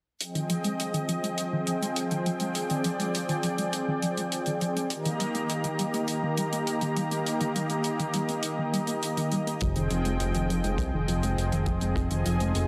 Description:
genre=synthwave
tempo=102 BPM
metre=4/4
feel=straight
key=F dorian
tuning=A4 = 444 Hz
part: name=brassy analog pad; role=sustained chords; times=0.2-12.7 s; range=Eb3 to Bb5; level=-31 LUFS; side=equal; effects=chorus, sidechain pumping, shimmer reverb
part: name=hi-hat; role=drums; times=0.2-12.7 s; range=none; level=-37 LUFS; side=equal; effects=studio reverb
part: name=soft round pluck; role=arpeggios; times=0.3-12.5 s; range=Eb3 to Bb3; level=-35 LUFS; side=equal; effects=subtle chorus, delay
part: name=fat analog bass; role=bass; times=9.6-12.7 s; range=F1 to C2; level=-30 LUFS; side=equal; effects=sidechain pumping
part: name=kick drum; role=drums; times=9.6-12.1 s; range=none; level=-33 LUFS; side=equal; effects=studio reverb
room=moderate lush hall reverb, RT60 1.8 s, studio ambience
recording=lossy compression artefacts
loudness=-28 LUFS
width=mono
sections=0.2-12.7 A section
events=filter sweep on synth arpeggio sound 0.2-12.7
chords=0.2 Fm7; 4.9 Eb; 9.6 Fm7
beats=| 0.20 0.79 1.38 1.97 | 2.55 3.14 3.73 4.32 | 4.91 5.49 6.08 6.67 | 7.26 7.85 8.44 9.02 | 9.61 10.20 10.79 11.38 | 11.96 12.55

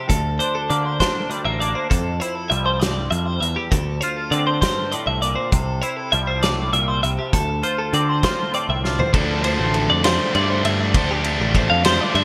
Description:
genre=math rock and midwest emo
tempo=66 BPM (dotted quarters)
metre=6/8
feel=straight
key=D minor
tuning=A4 = 440 Hz
part: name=twangy electric guitar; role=accompaniment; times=0.0-10.9 s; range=D2 to F4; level=-29 LUFS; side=equal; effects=analog chorus
part: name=twelve-string electric guitar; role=arpeggios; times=0.0-12.2 s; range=G4 to F5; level=-24 LUFS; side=equal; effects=none
part: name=picked electric bass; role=bass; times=0.1-12.2 s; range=A1 to D3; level=-26 LUFS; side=equal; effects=none
part: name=loose indie drum kit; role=drums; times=0.1-12.2 s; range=hi-hat, kick drum, ride cymbal, snare drum, toms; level=-25 LUFS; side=equal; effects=gated reverb
part: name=biting overdriven guitar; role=riff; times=9.1-12.2 s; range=D3 to D4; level=-24 LUFS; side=equal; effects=none
room=moderate lush hall reverb, RT60 1.6 s, small room ambience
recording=bright 1980s-style digital production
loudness=-20 LUFS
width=mono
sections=0.0-9.1 A section; 9.1-12.2 B section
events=drum fill 8.8-9.1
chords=0.1 Bbmaj7/D; 1.9 Fmaj9; 7.3 Dm7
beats=| 0.10 1.00 | 1.91 2.81 | 3.72 4.62 | 5.53 6.43 | 7.33 8.24 | 9.14 10.04 | 10.94 11.84

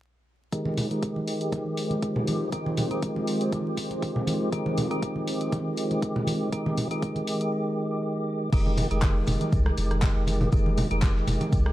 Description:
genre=deep house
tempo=120 BPM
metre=4/4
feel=swing 54% on 16ths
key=F minor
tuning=A4 = 444 Hz
part: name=hollow soft pad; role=sustained chords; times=0.5-7.5 s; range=Ab3 to C5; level=-35 LUFS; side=equal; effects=chorus, sidechain pumping
part: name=percussive tonewheel organ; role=stabs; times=0.5-11.7 s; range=Eb3 to G4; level=-28 LUFS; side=equal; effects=chorus vibrato, slow rotary speaker, sidechain pumping, low-pass filter, digital delay
part: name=deep house drum kit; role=drums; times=0.5-11.7 s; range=crash cymbal, handclaps, hi-hat, rim click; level=-36 LUFS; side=left 1 dB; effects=none
part: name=electronic kick drum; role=drums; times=0.5-11.6 s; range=none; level=-26 LUFS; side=equal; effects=high-pass filter on kick, high-pass filter on room
part: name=deep dark ambient pad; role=texture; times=2.3-7.5 s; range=F4 to C5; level=-35 LUFS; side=equal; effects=chorus, built-in reverb, sidechain pumping
part: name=congas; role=percussion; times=0.7-11.5 s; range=none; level=-31 LUFS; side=right 1 dB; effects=none
part: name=warm sub bass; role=bass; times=8.5-11.7 s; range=F1 to C2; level=-27 LUFS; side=equal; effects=sidechain pumping
part: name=vintage brush drum kit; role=drums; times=8.5-11.7 s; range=hi-hat, shaker, snare drum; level=-46 LUFS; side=equal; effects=none
room=light reverb, small room ambience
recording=dark, warm production, vinyl crackle, faint mains hum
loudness=-24 LUFS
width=side -15 dB against mid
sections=0.5-8.5 A section; 8.5-11.7 B section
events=filter sweep on tonewheel organ 0.5-8.5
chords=0.5 Fm9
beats=| 0.53 1.02 1.52 2.02 | 2.52 3.02 3.52 4.03 | 4.53 5.03 5.53 6.03 | 6.53 7.03 7.53 8.03 | 8.53 9.03 9.53 10.03 | 10.53 11.03 11.53

